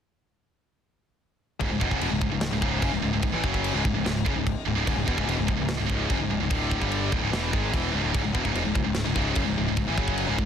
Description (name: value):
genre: heavy metal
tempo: 147 BPM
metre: 4/4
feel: straight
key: C# minor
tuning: A4 = 441 Hz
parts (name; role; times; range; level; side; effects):
- heavy high-gain guitar; riff; 1.6-10.5 s; C#2 to G#3; -29 LUFS; left 12 dB; distortion
- scooped high-gain guitar; riff; 1.6-10.5 s; C#2 to G#3; -28 LUFS; right 12 dB; distortion
- fuzz picked electric bass; bass; 1.6-10.5 s; C#1 to A1; -30 LUFS; equal; overdrive
- tight metal drum kit; drums; 1.6-10.5 s; crash cymbal, kick drum, snare drum; -29 LUFS; equal; none
room: studio reverb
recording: dense, heavily limited modern master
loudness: -23 LUFS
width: side -8 dB against mid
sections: 1.6-10.5 A section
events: none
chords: 1.6 C#m